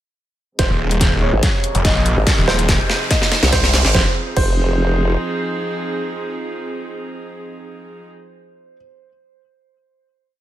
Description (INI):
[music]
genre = heavy wobble dubstep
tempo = 143 BPM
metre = 4/4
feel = half-time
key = F minor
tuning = A4 = 440 Hz
[part]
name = dark baby grand piano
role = melody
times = 0.6-8.8 s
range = C5 to Eb5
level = -25 LUFS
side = right 3 dB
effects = dub echo
[part]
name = rich chamber string section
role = sustained chords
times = 0.6-8.1 s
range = C3 to Ab4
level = -26 LUFS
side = right 1 dB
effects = sidechain pumping, low-pass filter
[part]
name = formant-sweep wobble bass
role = bass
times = 0.6-5.2 s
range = F1 to C2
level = -17 LUFS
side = equal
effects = chorus, overdrive
[part]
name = dubstep drum kit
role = drums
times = 0.6-4.5 s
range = crash cymbal, hi-hat, snare drum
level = -20 LUFS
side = left 1 dB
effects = high-pass filter on snare, high-pass filter on hats, high-pass filter on cymbals, high-pass filter on room
[part]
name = electronic kick drum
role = drums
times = 0.6-4.5 s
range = none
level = -19 LUFS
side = equal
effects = none
[part]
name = riser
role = sound effects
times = 1.5-3.9 s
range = none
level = -25 LUFS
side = right 2 dB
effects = none
[part]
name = snarling distorted saw bass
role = bass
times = 0.7-2.8 s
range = Eb1 to Bb1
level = -17 LUFS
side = equal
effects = distortion, overdrive
[sound]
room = light reverb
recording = none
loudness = -15 LUFS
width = side -12 dB against mid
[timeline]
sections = 0.6-3.9 build; 3.9-7.3 final chord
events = build-up 0.6-3.9; drum fill 0.6-3.9; filter sweep on string section 0.6-3.9; riser 1.5-3.9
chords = 0.6 Fm7; 1.4 Bbmadd9; 2.3 Fm7; 3.1 Ab; 3.9 Fm7